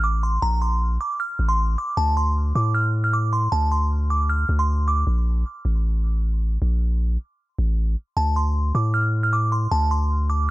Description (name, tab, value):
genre	hip hop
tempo	155 BPM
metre	4/4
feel	half-time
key	D minor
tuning	A4 = 439 Hz
part	glassy synth bell	melody	0.0-5.0, 8.2-10.5 s	A5 to F6	-24 LUFS	right 1 dB	chorus, low-pass filter
part	long sustained 808-style bass	bass	0.0-10.5 s	A1 to A2	-20 LUFS	equal	none
room	digital ambience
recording	dark, warm production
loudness	-20 LUFS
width	side -18 dB against mid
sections	0.0-10.5 A section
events	break 5.1-8.2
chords	0.0 Bbsus2; 2.0 D5; 5.1 N.C.; 8.2 D5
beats	0.04 | 0.42 0.81 1.20 1.59 | 1.97 2.36 2.75 3.13 | 3.52 3.91 4.30 4.68 | 5.07 5.46 5.84 6.23 | 6.62 7.01 7.39 7.78 | 8.17 8.55 8.94 9.33 | 9.71 10.10 10.49